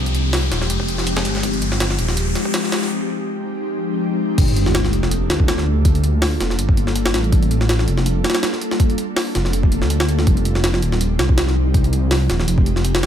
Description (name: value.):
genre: drum and bass, jungle.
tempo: 163 BPM.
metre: 4/4.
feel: swing 54% on 16ths.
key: G phrygian.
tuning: A4 = 440 Hz.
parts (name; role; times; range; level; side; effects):
dark detuned saw bass; bass; 0.0-13.1 s; Eb1 to D2; -19 LUFS; equal; none.
riser and sub drop; sound effects; 0.0-5.9 s; none; -26 LUFS; left 1 dB; none.
jungle sampler-style drum kit; drums; 0.1-13.1 s; crash cymbal, hi-hat, kick drum, snare drum; -19 LUFS; equal; overdrive, high-pass filter on snare, studio reverb, high-pass filter on hats, high-pass filter on kick, high-pass filter on cymbals.
room: digital ambience.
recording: none.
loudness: -16 LUFS.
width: side -9 dB against mid.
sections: 0.0-4.4 A section; 4.4-13.1 B section.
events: build-up 0.0-4.4; riser 0.0-2.9; break 2.9-4.4; drop 4.4-13.1; impact 4.4-5.9.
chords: none.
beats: 0.33 0.70 1.07 | 1.44 1.80 2.17 2.54 | 2.91 3.28 3.64 4.01 | 4.38 4.75 5.12 5.48 | 5.85 6.22 6.59 6.96 | 7.33 7.69 8.06 8.43 | 8.80 9.16 9.53 9.90 | 10.27 10.64 11.01 11.37 | 11.74 12.11 12.48 12.85.